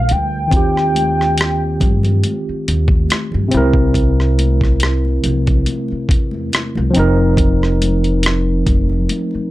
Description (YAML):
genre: R&B, neo-soul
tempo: 70 BPM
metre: 4/4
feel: swing 54% on 16ths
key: C minor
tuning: A4 = 442 Hz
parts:
  - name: warm velvety synth lead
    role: melody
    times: 0.0-2.7 s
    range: F5 to G5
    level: -19 LUFS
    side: left 1 dB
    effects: chorus, slapback echo, plate reverb
  - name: tine electric piano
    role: accompaniment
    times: 0.0-9.5 s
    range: C3 to Bb4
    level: -18 LUFS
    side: right 1 dB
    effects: medium stereo tremolo, plate reverb
  - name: upright bass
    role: bass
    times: 0.0-9.4 s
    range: F1 to G2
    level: -17 LUFS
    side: equal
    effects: none
  - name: boom bap sampler-style drum kit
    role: drums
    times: 0.1-9.3 s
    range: hi-hat, kick drum, rim click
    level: -16 LUFS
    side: equal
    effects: none
  - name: congas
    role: percussion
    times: 0.8-9.5 s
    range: none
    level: -27 LUFS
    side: left 2 dB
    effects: none
room: light reverb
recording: dark, warm production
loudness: -13 LUFS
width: side -16 dB against mid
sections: 0.0-9.5 A section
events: none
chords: 0.0 Gm7; 0.5 Eb69; 3.5 C7; 6.9 F7sus4